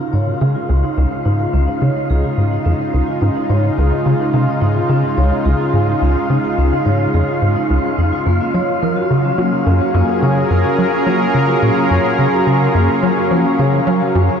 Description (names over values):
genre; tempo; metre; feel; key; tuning
ambient, sequencer-driven space music; 107 BPM; 4/4; straight; Db major; A4 = 440 Hz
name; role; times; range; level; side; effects
lush unison pad; sustained chords; 0.0-14.4 s; Db3 to Bb4; -18 LUFS; equal; chorus, shimmer reverb
vibraphone with soft mallets; arpeggios; 0.0-14.4 s; Bb3 to Db5; -22 LUFS; right 2 dB; auto-pan, tape echo, shimmer reverb
wind-like tuned noise texture; texture; 0.0-14.4 s; F4 to F5; -23 LUFS; left 1 dB; built-in reverb, shimmer reverb
tight sequencer bass; riff; 0.1-14.3 s; Db2 to Gb3; -16 LUFS; equal; ensemble chorus, tape echo
room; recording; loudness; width
moderate huge ambient reverb, RT60 8.2 s; dark, warm production, nothing above 7.9 kHz; -13 LUFS; side -7 dB against mid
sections
0.0-14.4 A section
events
none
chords
0.0 Dbadd9; 8.3 Gb